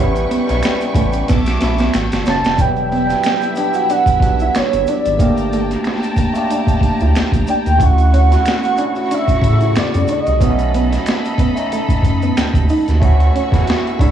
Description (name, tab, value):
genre	R&B, neo-soul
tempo	92 BPM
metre	4/4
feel	swing 56% on 16ths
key	D major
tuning	A4 = 440 Hz
part	hollow-body jazz guitar	second line	0.0-14.1 s	A3 to F#4	-21 LUFS	right 3 dB	none
part	overdriven tine electric piano	accompaniment	0.0-14.1 s	C#3 to A4	-21 LUFS	left 2 dB	phaser
part	rich studio string section	sustained chords	0.0-14.1 s	E4 to D6	-27 LUFS	right 1 dB	none
part	rubbery square bass	bass	0.0-14.1 s	E1 to A2	-16 LUFS	right 1 dB	none
part	boom bap sampler-style drum kit	drums	0.2-14.1 s	hi-hat, kick drum, snare drum	-18 LUFS	right 1 dB	cassette tape
part	tube shaker and finger snaps	percussion	0.2-13.0 s	none	-34 LUFS	right 6 dB	none
part	warm velvety synth lead	melody	2.3-10.7 s	C#5 to A5	-18 LUFS	right 2 dB	chorus, cassette tape, tape echo
room	light reverb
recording	home recording on cassette, small room reverb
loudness	-13 LUFS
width	side -10 dB against mid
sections	0.0-2.6 A section; 2.6-13.0 B section; 13.0-14.1 A section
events	drum fill 1.3-2.6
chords	0.0 A9; 1.3 Bm11; 1.9 A7; 2.6 Em9; 5.2 Gmadd9; 7.8 Dmaj9; 10.4 B7; 13.0 Dmaj9